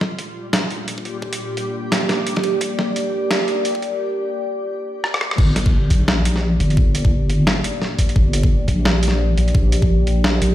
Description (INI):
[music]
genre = half-time drum and bass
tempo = 173 BPM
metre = 4/4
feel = swing 59% on 16ths, half-time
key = G minor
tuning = A4 = 437 Hz
[part]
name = dark analog pad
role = sustained chords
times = 0.0-10.5 s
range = Bb3 to D5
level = -25 LUFS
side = left 1 dB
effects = chorus, phaser, sidechain pumping
[part]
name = boom bap sampler-style drum kit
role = drums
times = 0.0-10.5 s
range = crash cymbal, hi-hat, rim click, snare drum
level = -22 LUFS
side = equal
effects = none
[part]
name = backwards swelling texture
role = texture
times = 0.0-4.0 s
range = G3 to G4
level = -29 LUFS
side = right 4 dB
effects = built-in reverb
[part]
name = electronic kick drum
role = drums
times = 1.0-9.9 s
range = none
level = -17 LUFS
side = equal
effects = overdrive, high-pass filter on kick, high-pass filter on room
[part]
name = deep soft wobble bass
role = bass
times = 5.4-10.5 s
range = G1 to Bb1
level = -17 LUFS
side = equal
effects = chorus
[sound]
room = light reverb, digital ambience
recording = played on a big sound system in a bare room, large studio reverb, high-pass filter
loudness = -16 LUFS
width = side -13 dB against mid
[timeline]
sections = 0.0-5.4 A section; 5.4-10.5 B section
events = build-up 0.0-5.4; break 4.0-5.4; drum fill 5.0-5.4; drop 5.4-10.5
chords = 0.0 Gm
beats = 0.18 0.53 0.88 | 1.22 1.57 1.92 2.26 | 2.61 2.96 3.31 3.65 | 4.00 4.34 4.69 5.04 | 5.39 5.73 6.08 6.43 | 6.77 7.12 7.47 7.81 | 8.16 8.51 8.85 9.20 | 9.55 9.89 10.24